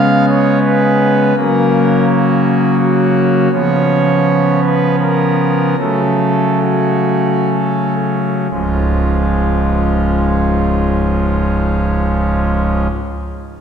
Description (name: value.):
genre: classical, chorale-style piece for pipe organ.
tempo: 59-86 BPM.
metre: 3/4.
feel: rubato.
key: Db major.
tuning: A4 = 440 Hz.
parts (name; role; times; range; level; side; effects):
pipe organ, foundations; solo; 0.0-12.9 s; Db1 to F5; -12 LUFS; equal; none.
room: wet church reverb, RT60 2.6 s.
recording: none.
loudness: -12 LUFS.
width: side -7 dB against mid.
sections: 0.0-8.5 A section; 8.5-13.6 B section.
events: slowing down 2.4-8.5.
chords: 0.0 Db7; 1.4 Gb/Db; 3.5 Db7; 5.8 Gbm/Db; 8.5 Db.